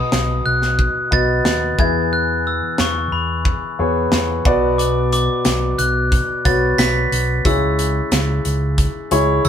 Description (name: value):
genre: piano-driven pop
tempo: 90 BPM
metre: 4/4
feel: straight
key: unclear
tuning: A4 = 441 Hz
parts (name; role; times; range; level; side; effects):
- glockenspiel with soft plastic mallets; melody; 0.0-9.5 s; B5 to B6; -22 LUFS; equal; none
- warm baby grand piano; accompaniment; 0.0-9.5 s; B2 to E5; -20 LUFS; left 2 dB; none
- fingered electric bass; bass; 0.1-9.5 s; B1 to E2; -21 LUFS; equal; none
- modern studio drum kit; drums; 0.1-9.5 s; hi-hat, kick drum, snare drum, toms; -20 LUFS; equal; none
- tambourine; percussion; 5.4-9.5 s; none; -31 LUFS; right 8 dB; none
room: moderate studio reverb, RT60 0.5 s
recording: band playing live in one room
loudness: -15 LUFS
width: side -9 dB against mid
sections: 0.0-9.5 A section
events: none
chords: 0.0 B; 1.8 E; 4.5 Bm; 7.4 C#m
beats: 0.12 0.79 1.45 | 2.12 2.79 3.45 4.12 | 4.78 5.45 6.12 6.78 | 7.45 8.11 8.78 9.44